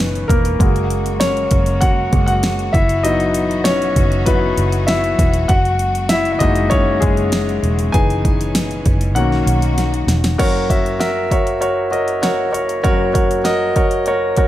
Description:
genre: piano-driven pop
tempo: 98 BPM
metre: 4/4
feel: straight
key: F# mixolydian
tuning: A4 = 439 Hz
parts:
  - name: clear concert grand piano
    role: accompaniment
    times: 0.0-14.5 s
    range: F#1 to G#5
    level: -17 LUFS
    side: left 1 dB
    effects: none
  - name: rich studio string section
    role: sustained chords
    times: 0.0-10.4 s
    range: B2 to F#4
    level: -27 LUFS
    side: right 1 dB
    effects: none
  - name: vintage muted fingered electric bass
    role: bass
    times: 0.0-10.4 s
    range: E1 to B1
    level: -19 LUFS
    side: equal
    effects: none
  - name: deep house drum kit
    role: drums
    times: 0.0-14.5 s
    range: crash cymbal, hi-hat, kick drum, snare drum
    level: -18 LUFS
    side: equal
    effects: none
room: light reverb, digital ambience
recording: none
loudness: -14 LUFS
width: side -13 dB against mid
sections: 0.0-10.4 A section; 10.4-14.5 B section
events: grand piano solo 0.0-10.4; drum fill 9.8-10.4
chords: 0.0 C#m7/F#; 0.6 F#add9; 2.7 Esus2/F#; 5.5 F#add9; 7.9 C#m7/F#; 9.2 Bmaj7; 10.4 F#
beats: | 0.60 1.21 1.83 2.44 | 3.05 3.66 4.28 4.89 | 5.50 6.11 6.72 7.33 | 7.95 8.56 9.17 9.78 | 10.40 11.01 11.62 12.23 | 12.85 13.46 14.07

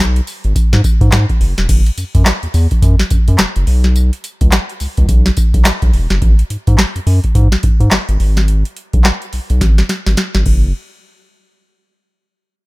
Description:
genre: R&B, new jack swing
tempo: 106 BPM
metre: 4/4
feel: swing 60% on 16ths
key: unclear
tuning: A4 = 442 Hz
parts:
  - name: round analog bass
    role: bass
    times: 0.0-10.7 s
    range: E1 to G#2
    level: -12 LUFS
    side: equal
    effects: none
  - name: booming analog drum machine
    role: drums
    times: 0.2-10.7 s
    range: crash cymbal, handclaps, hi-hat, kick drum, snare drum, tambourine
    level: -12 LUFS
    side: equal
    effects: none
room: digital ambience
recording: none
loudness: -11 LUFS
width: side -22 dB against mid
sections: 0.0-1.7 A section; 1.7-10.7 B section; 10.7-12.7 C section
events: drum fill 9.6-10.7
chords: none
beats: 0.56 1.12 | 1.69 2.26 2.82 3.39 | 3.95 4.52 5.09 5.65 | 6.22 6.78 7.35 7.92 | 8.48 9.05 9.62 10.18

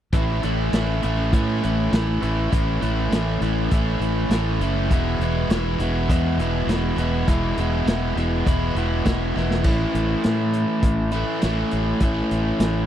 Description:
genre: classic rock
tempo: 101 BPM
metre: 4/4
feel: straight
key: unclear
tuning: A4 = 441 Hz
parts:
  - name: overdriven electric guitar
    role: riff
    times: 0.1-12.9 s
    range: E2 to E4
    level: -23 LUFS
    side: equal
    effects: none
  - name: modern bright fingered electric bass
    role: bass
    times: 0.1-12.9 s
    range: E1 to A2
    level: -24 LUFS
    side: equal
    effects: none
  - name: vintage drum kit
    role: drums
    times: 0.1-12.7 s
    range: crash cymbal, hi-hat, kick drum, snare drum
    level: -23 LUFS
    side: equal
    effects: none
room: little or no reverb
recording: dry, close 1970s-style studio recording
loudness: -19 LUFS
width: side -11 dB against mid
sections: 0.1-9.6 A section; 9.6-12.9 B section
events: drum fill 9.3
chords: 0.1 A; 4.9 E; 9.6 A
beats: | 0.14 0.73 1.33 1.93 | 2.53 3.12 3.72 4.31 | 4.91 5.50 6.09 6.69 | 7.28 7.87 8.46 9.05 | 9.64 10.23 10.83 11.42 | 12.01 12.60

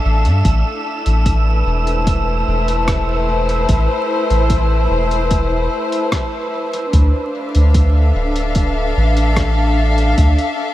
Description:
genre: ambient dub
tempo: 74 BPM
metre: 4/4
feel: straight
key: unclear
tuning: A4 = 440 Hz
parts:
  - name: dark studio string section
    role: sustained chords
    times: 0.0-10.7 s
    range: A3 to F5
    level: -19 LUFS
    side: left 1 dB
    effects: none
  - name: wind-like tuned noise texture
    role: texture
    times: 0.0-10.7 s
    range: E6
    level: -30 LUFS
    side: right 8 dB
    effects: built-in reverb
  - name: soft dub sub bass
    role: bass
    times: 0.1-10.4 s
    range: D1 to G2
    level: -15 LUFS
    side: equal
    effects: none
  - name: lo-fi sampler-style drum kit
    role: drums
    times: 0.2-10.5 s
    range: hi-hat, rim click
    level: -29 LUFS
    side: equal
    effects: dub echo
  - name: electronic kick drum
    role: drums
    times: 0.5-10.3 s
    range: none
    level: -18 LUFS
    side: equal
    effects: none
room: moderate huge ambient reverb, RT60 4.7 s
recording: dreamy mix soaked in reverb, vinyl crackle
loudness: -13 LUFS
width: side -14 dB against mid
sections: 0.0-10.7 A section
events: none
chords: 0.5 Amadd9; 6.9 Dm7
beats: | 0.45 1.26 2.07 2.88 | 3.69 4.50 5.32 6.13 | 6.94 7.75 8.56 9.37 | 10.18

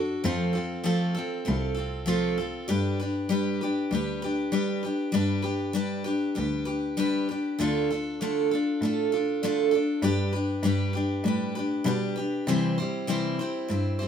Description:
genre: honky-tonk and classic country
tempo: 98 BPM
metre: 4/4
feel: straight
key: unclear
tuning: A4 = 440 Hz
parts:
  - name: picked steel-string acoustic guitar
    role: accompaniment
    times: 0.0-14.1 s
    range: C3 to C5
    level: -26 LUFS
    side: equal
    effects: none
  - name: warm cello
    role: bass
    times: 0.0-14.1 s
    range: C2 to C3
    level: -30 LUFS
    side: equal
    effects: none
room: moderate studio reverb, RT60 0.7 s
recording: minimal, uncompressed stereo recording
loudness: -25 LUFS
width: side -8 dB against mid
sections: 0.0-14.1 A section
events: none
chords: 0.3 F; 2.7 G; 7.6 Dm; 10.0 G; 12.5 C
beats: | 0.26 0.87 1.48 2.09 | 2.70 3.31 3.92 4.53 | 5.14 5.75 6.36 6.97 | 7.58 8.20 8.81 9.42 | 10.03 10.64 11.25 11.86 | 12.47 13.08 13.69

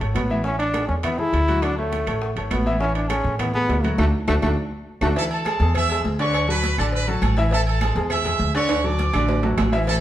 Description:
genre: latin, salsa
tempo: 204 BPM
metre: 4/4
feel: straight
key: A major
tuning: A4 = 440 Hz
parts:
  - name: clear baby grand piano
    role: accompaniment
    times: 0.0-10.0 s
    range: D3 to F#5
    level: -26 LUFS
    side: left 1 dB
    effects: none
  - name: upright bass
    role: bass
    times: 0.0-10.0 s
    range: G#1 to A2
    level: -23 LUFS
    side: equal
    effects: none
  - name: congas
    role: percussion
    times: 0.0-10.0 s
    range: none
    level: -30 LUFS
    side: equal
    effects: none
  - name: timbales and agogo bells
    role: percussion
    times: 0.0-10.0 s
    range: none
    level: -29 LUFS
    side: right 5 dB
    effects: none
  - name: bright trombone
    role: melody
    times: 0.1-5.1 s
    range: A3 to E4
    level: -24 LUFS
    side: equal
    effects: none
  - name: bongos and cowbell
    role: percussion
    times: 0.1-10.0 s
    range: none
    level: -34 LUFS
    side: left 4 dB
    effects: none
  - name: claves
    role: percussion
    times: 0.2-9.7 s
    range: none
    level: -37 LUFS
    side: right 1 dB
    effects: none
  - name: brilliant trumpet section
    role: melody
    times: 5.2-10.0 s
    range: A4 to E6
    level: -25 LUFS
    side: right 2 dB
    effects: none
room: moderate large studio reverb, RT60 1.2 s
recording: band playing live in one room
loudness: -19 LUFS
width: side -12 dB against mid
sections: 0.0-5.2 A section; 5.2-10.0 B section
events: drum fill 4.0-5.2, 8.7-9.9; band accent 4.0-5.2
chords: 0.4 A5; 1.6 Dmaj7; 2.8 Amaj7; 4.0 D; 5.2 Amaj7; 6.3 Dmaj7; 7.5 Amaj7; 8.7 Dmaj7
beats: 0.15 | 0.45 0.74 1.04 1.33 | 1.63 1.92 2.22 2.51 | 2.81 3.10 3.40 3.69 | 3.98 4.28 4.57 4.87 | 5.16 5.46 5.75 6.04 | 6.34 6.63 6.93 7.22 | 7.52 7.81 8.11 8.40 | 8.69 8.99 9.28 9.58 | 9.87

